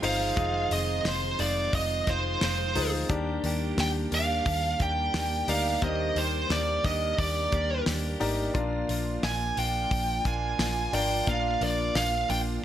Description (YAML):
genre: piano-driven pop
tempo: 88 BPM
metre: 4/4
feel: straight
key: Eb major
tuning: A4 = 440 Hz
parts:
  - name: bluesy overdriven lead guitar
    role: melody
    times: 0.0-12.4 s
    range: C5 to Ab5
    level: -28 LUFS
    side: right 2 dB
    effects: distortion
  - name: clear concert grand piano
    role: accompaniment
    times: 0.0-12.6 s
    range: Bb2 to Eb5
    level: -34 LUFS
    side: left 4 dB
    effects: none
  - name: tonewheel organ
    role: sustained chords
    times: 0.0-12.6 s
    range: F3 to Ab4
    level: -40 LUFS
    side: equal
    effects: chorus vibrato, slow rotary speaker
  - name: direct-recorded clean electric guitar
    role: riff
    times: 0.0-12.6 s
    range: F2 to G4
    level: -36 LUFS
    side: right 5 dB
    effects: none
  - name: vintage muted picked electric bass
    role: bass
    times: 0.0-12.6 s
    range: F1 to Eb2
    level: -32 LUFS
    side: equal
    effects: none
  - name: damped 70s drum kit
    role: drums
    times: 0.0-12.5 s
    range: hi-hat, kick drum, snare drum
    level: -32 LUFS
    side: left 1 dB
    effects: none
room: light reverb, small room ambience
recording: none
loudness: -25 LUFS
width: side -11 dB against mid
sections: 0.0-12.6 A section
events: none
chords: 0.0 Fm7; 3.1 Ebmaj7; 8.5 Bb